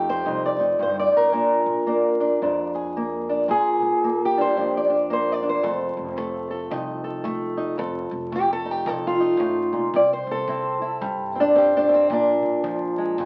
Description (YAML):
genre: acoustic country blues, solo or duo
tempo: 112 BPM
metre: 4/4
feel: swing 61% on 8ths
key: F mixolydian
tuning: A4 = 440 Hz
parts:
  - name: fingerpicked old ladder-braced acoustic guitar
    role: melody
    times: 0.0-13.3 s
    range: F2 to D5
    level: -22 LUFS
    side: equal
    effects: none
  - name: upright bass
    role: bass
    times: 0.0-13.3 s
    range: F1 to G2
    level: -42 LUFS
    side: equal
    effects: none
  - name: kick drum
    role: drums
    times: 5.6-13.3 s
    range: none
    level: -47 LUFS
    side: equal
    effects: none
room: moderate studio reverb, RT60 0.5 s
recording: very old 78 rpm record, vinyl crackle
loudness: -22 LUFS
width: mono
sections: 0.0-13.3 A section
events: none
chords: 0.0 F7; 1.3 Bb7; 5.6 F7; 9.9 C; 12.1 Bb7